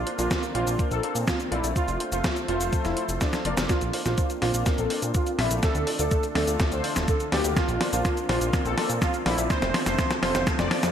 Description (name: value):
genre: italo disco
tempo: 124 BPM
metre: 4/4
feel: straight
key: unclear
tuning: A4 = 442 Hz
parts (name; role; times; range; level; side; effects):
- analog synth brass; melody; 0.0-10.8 s; Bb3 to D5; -29 LUFS; right 1 dB; chorus, digital delay
- lush unison pad; sustained chords; 0.0-10.9 s; D3 to C5; -34 LUFS; equal; chorus
- clear concert grand piano; stabs; 0.0-10.9 s; A3 to E5; -32 LUFS; left 3 dB; analog chorus
- fat analog bass; bass; 0.0-10.9 s; D1 to Bb2; -29 LUFS; equal; none
- clean 12-bit digital drum machine; drums; 0.1-10.9 s; cabasa, hi-hat, snare drum; -28 LUFS; equal; small room ambience, gated reverb
- electronic kick drum; drums; 0.3-10.6 s; none; -27 LUFS; equal; small room ambience
room: wet plate reverb, RT60 1.8 s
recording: bright 1980s-style digital production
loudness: -22 LUFS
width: side -9 dB against mid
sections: 0.0-3.7 A section; 3.7-10.9 B section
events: drum fill 3.2-3.7, 3.7-10.9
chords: 0.0 Bbadd9; 1.8 F; 3.7 Bbadd9; 5.6 Dm; 7.6 Bbadd9; 9.5 F